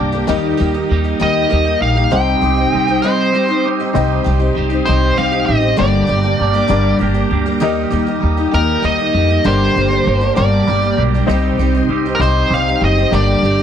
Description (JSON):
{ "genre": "folk rock and heartland rock", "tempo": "66 BPM (dotted quarters)", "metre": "6/8", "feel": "straight", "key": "C minor", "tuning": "A4 = 440 Hz", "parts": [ { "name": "clear baby grand piano", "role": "accompaniment", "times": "0.0-13.6 s", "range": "D4 to Eb5", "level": "-24 LUFS", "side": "left 9 dB", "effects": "none" }, { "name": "picked twelve-string acoustic guitar", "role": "accompaniment", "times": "0.0-13.6 s", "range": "G2 to G4", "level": "-20 LUFS", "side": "left 6 dB", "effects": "none" }, { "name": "tonewheel organ", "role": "sustained chords", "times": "0.0-13.6 s", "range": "G4 to C6", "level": "-28 LUFS", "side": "equal", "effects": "chorus vibrato, slow rotary speaker" }, { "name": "twelve-string electric guitar", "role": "riff", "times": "0.0-13.6 s", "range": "G2 to G4", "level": "-20 LUFS", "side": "right 10 dB", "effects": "phaser" }, { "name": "upright bass", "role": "bass", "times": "0.0-13.6 s", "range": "F#1 to F2", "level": "-17 LUFS", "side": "equal", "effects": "none" }, { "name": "nasal lead guitar with a parked wah", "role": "melody", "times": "1.2-13.6 s", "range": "Bb4 to G5", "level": "-18 LUFS", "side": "equal", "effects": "overdrive" } ], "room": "studio reverb", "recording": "dark, warm production", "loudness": "-12 LUFS", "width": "side -8 dB against mid", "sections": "0.0-4.0 A section; 4.0-13.6 A section", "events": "grand piano fill 0.0", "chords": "0.3 Eb; 2.1 Cm; 5.8 Gm; 7.6 Eb; 9.4 Gm; 11.3 Cm; 13.1 Gm" }